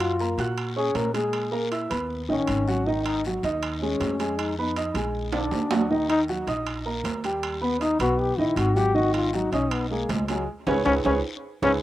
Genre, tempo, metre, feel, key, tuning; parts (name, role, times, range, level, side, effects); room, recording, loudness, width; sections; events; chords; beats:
Afro-Cuban jazz; 158 BPM; 4/4; straight; A4 = 440 Hz
warm trombone; second line; 0.0-11.7 s; F#3 to A#4; -26 LUFS; left 3 dB
warm upright piano; accompaniment; 0.0-11.7 s; D3 to F#6; -27 LUFS; right 1 dB; slapback echo
upright bass; bass; 0.0-11.8 s; G#1 to A#2; -30 LUFS; equal
timbales; percussion; 0.0-11.7 s; -31 LUFS; right 5 dB
guiro; percussion; 0.2-11.7 s; -41 LUFS; left 6 dB
little or no reverb; recorded outdoors, with no room sound; -23 LUFS; side -14 dB against mid
0.0-11.8 A section
trombone solo 0.0-11.8; drum fill 5.3-5.9, 11.2-11.8; band accent 10.5-11.8
0.0 F#maj9; 1.3 Emaj7#11; 2.1 B13; 2.9 G#5; 4.4 Fm7b5; 5.1 A#7b13; 5.9 D#m; 7.4 D#aug; 9.0 G#m7; 10.5 C#5
0.20 0.58 0.96 | 1.34 1.72 2.10 2.48 | 2.86 3.24 3.62 4.00 | 4.38 4.76 5.14 5.53 | 5.91 6.29 6.67 7.05 | 7.43 7.81 8.19 8.57 | 8.95 9.33 9.71 10.10 | 10.48 10.86 11.24 11.62